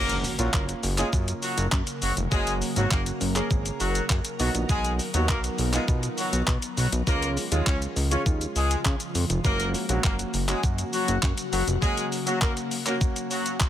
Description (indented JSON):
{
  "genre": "dance-pop",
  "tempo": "101 BPM",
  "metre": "4/4",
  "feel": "straight",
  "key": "F# major",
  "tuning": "A4 = 440 Hz",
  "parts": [
    { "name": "warm horn section", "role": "melody", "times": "0.0-13.5 s", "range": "F#3 to C#5", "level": "-30 LUFS", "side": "left 1 dB", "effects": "sidechain pumping, dub echo" },
    { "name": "warm baby grand piano", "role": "accompaniment", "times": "0.0-13.7 s", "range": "G#3 to G#4", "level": "-32 LUFS", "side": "right 3 dB", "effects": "sidechain pumping" },
    { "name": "ethereal airy pad", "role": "sustained chords", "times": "0.2-13.7 s", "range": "C#3 to A#4", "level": "-34 LUFS", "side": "left 3 dB", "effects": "ensemble chorus, built-in reverb, phaser, sidechain pumping" },
    { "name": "fat analog bass", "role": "bass", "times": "0.0-11.8 s", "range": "E#1 to C#3", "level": "-27 LUFS", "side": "equal", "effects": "sidechain pumping" },
    { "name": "impact", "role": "sound effects", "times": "0.1-2.3 s", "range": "none", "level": "-39 LUFS", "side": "equal", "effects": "none" },
    { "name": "clean 12-bit digital drum machine", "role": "drums", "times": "0.1-13.7 s", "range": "handclaps, hi-hat, kick drum, shaker", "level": "-26 LUFS", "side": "equal", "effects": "overdrive" }
  ],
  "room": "little or no reverb",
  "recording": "none",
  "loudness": "-23 LUFS",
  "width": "side -11 dB against mid",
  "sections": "0.0-13.7 A section",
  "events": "impact 0.0-2.3",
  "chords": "0.0 F#; 4.4 B; 7.1 C#; 9.4 F#"
}